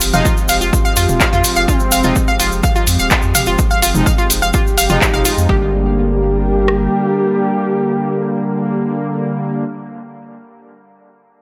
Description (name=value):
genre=melodic techno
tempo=126 BPM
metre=4/4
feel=straight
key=G phrygian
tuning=A4 = 440 Hz
part: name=evolving wavetable pad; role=sustained chords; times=0.0-9.6 s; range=F3 to Bb4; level=-26 LUFS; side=equal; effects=chorus, built-in reverb, sidechain pumping
part: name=round analog bass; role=bass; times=0.0-6.9 s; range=Eb1 to F2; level=-22 LUFS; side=equal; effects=sidechain pumping
part: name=house drum kit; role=drums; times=0.0-5.3 s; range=handclaps, hi-hat, toms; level=-20 LUFS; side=equal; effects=studio reverb
part: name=cabasa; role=percussion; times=0.0-5.5 s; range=none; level=-22 LUFS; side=equal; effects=none
part: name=analog pluck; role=arpeggios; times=0.1-5.7 s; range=F4 to F6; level=-20 LUFS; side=equal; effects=chorus, sidechain pumping, dub echo
part: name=analog synth brass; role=stabs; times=0.1-9.6 s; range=D3 to Eb4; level=-22 LUFS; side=equal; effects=chorus, sidechain pumping, dub echo
part: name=house drum kit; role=drums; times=0.3-6.8 s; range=kick drum, rim click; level=-19 LUFS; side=equal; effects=studio reverb
part: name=fat analog lead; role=melody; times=0.7-9.6 s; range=C4 to G4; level=-23 LUFS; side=equal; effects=chorus, sidechain pumping, dub echo
room=light reverb, digital ambience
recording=none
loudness=-15 LUFS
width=mono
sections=0.0-5.5 A section; 5.5-9.3 B section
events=drop 0.0-5.5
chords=0.0 Fm7; 5.5 Gm